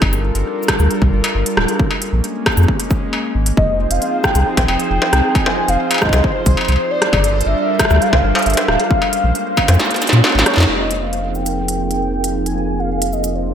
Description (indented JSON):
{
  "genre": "IDM",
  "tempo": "135 BPM",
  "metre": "4/4",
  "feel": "straight",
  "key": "unclear",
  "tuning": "A4 = 440 Hz",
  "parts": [
    { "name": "warbly tape-like pad", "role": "sustained chords", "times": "0.0-13.5 s", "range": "F3 to Bb4", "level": "-22 LUFS", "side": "right 1 dB", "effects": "chorus, built-in reverb, sidechain pumping" },
    { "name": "warm sub bass", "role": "bass", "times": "0.0-13.5 s", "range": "D1 to Bb2", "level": "-17 LUFS", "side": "equal", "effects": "none" },
    { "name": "electronic kick drum", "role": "drums", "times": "0.0-9.7 s", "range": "none", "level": "-19 LUFS", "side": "equal", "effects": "distortion" },
    { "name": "industrial drum kit", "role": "drums", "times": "0.0-13.3 s", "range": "hi-hat, rim click, shaker, snare drum, struck metal", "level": "-18 LUFS", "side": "equal", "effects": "none" },
    { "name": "warm velvety synth lead", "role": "melody", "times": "3.6-13.5 s", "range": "C5 to Ab5", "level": "-20 LUFS", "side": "equal", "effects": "chorus, slapback echo, ping-pong delay" },
    { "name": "bubbling stepped-filter texture", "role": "texture", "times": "3.6-13.5 s", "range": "Bb3 to C5", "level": "-29 LUFS", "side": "right 1 dB", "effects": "chorus, built-in reverb" }
  ],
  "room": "moderate lush hall reverb, RT60 1.8 s",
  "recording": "big arena sound",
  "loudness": "-13 LUFS",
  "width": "side -8 dB against mid",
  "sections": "0.0-10.7 A section; 10.7-13.5 B section",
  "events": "kick drops out 9.8-10.7; drum fill 9.8-10.7; band accent 10.6; filter sweep on ambient pad 10.7-13.5",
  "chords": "0.0 Gm9; 1.8 Bbm7; 3.6 Fm9; 6.9 Gm9; 8.9 Bbm9; 10.7 Fm9",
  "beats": "| 0.02 0.46 0.91 1.35 | 1.79 2.24 2.68 3.13 | 3.57 4.02 4.46 4.91 | 5.35 5.79 6.24 6.68 | 7.13 7.57 8.02 8.46 | 8.91 9.35 9.79 10.24 | 10.68 11.13 11.57 12.02 | 12.46 12.91 13.35"
}